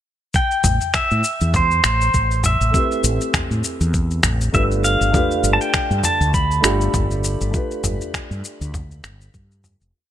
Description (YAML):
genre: sunset chillout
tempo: 100 BPM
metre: 4/4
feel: swing 57% on 16ths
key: A minor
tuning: A4 = 440 Hz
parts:
  - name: dusty soul sampler-style drum kit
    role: drums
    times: 0.3-9.9 s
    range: finger snaps, shaker, toms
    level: -22 LUFS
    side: left 1 dB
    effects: none
  - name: electronic kick drum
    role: drums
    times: 0.3-9.5 s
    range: none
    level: -22 LUFS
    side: equal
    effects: none
  - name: pedal steel guitar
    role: melody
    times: 0.4-9.3 s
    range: C5 to B5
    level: -20 LUFS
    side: right 1 dB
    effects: digital delay
  - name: mellow fretless electric bass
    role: bass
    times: 0.6-9.9 s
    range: F1 to A2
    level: -20 LUFS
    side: equal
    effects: none
  - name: dark concert grand piano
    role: accompaniment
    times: 2.7-10.0 s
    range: A3 to B4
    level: -24 LUFS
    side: equal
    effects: auto-pan, digital delay
room: light reverb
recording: bright 1980s-style digital production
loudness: -16 LUFS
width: side -11 dB against mid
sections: 0.3-9.9 groove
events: fade-out 6.7-9.9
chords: 0.3 Am7; 4.8 G7